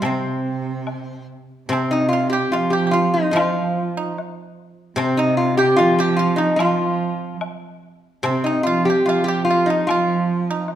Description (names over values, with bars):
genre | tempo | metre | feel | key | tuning
chinese traditional, Chinese chamber ensemble | 73 BPM | 2/4 | rubato | C yu mode | A4 = 439 Hz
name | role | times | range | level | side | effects
lap resonator guitar | melody | 0.0-10.6 s | C4 to G4 | -20 LUFS | left 2 dB | none
dark cello | second line | 0.0-10.7 s | C3 to F3 | -24 LUFS | right 5 dB | none
pipa | second line | 0.0-10.7 s | C4 to G4 | -25 LUFS | right 3 dB | none
guzheng | accompaniment | 0.0-10.7 s | C3 to F3 | -26 LUFS | left 1 dB | none
woodblock | percussion | 0.0-10.8 s | none | -31 LUFS | left 5 dB | none
room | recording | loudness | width
wet recital hall reverb, RT60 1.4 s | dark, warm production | -17 LUFS | side -11 dB against mid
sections
0.0-1.7 A section; 1.7-10.8 B section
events
none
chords
none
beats
| 0.02 0.86 | 1.71 2.54 | 3.36 4.17 | 4.98 5.79 | 6.60 7.42 | 8.26 9.09 | 9.90 10.71